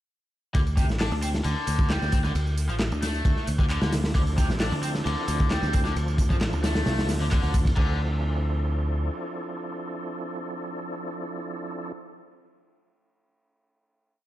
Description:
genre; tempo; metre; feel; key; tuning
breakbeat, breaks; 133 BPM; 4/4; straight; D minor; A4 = 440 Hz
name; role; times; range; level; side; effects
cranked stack guitar; riff; 0.5-8.0 s; C3 to D4; -31 LUFS; left 2 dB; overdrive, tube saturation, spring reverb, tape echo
picked electric bass; bass; 0.5-9.1 s; A1 to D2; -26 LUFS; equal; tube saturation
crunchy breakbeat drum kit; drums; 0.5-7.9 s; crash cymbal, hi-hat, kick drum, ride cymbal, snare drum; -25 LUFS; equal; none
garage drum kit; drums; 0.5-7.7 s; handclaps, hi-hat, tambourine; -39 LUFS; right 2 dB; overdrive
tonewheel organ; sustained chords; 4.2-11.9 s; F3 to A4; -34 LUFS; right 1 dB; chorus vibrato, fast rotary speaker, sidechain pumping
room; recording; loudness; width
small room ambience; dark, warm production; -23 LUFS; side -14 dB against mid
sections
0.5-7.8 drop; 7.8-11.4 final chord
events
drop 0.5-7.8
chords
0.5 Dm9

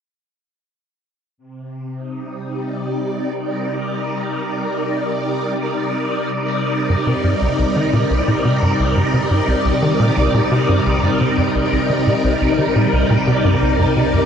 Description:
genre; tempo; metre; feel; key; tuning
ambient, sequencer-driven space music; 87 BPM; 4/4; straight; C minor; A4 = 440 Hz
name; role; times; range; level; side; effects
phased string machine; sustained chords; 1.4-14.3 s; C3 to D5; -17 LUFS; equal; ensemble chorus, phaser
tight sequencer bass; riff; 6.9-14.2 s; C2 to Eb3; -18 LUFS; equal; lush chorus, tape echo
analog drone; bass; 13.3-14.3 s; C2; -30 LUFS; equal; chorus, phaser
room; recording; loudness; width
wet huge ambient reverb, RT60 7.6 s; worn, warbling old tape, cassette tape, warbly pitch drift; -15 LUFS; side -8 dB against mid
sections
1.4-12.4 A section; 12.4-14.3 B section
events
none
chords
1.4 Cm7

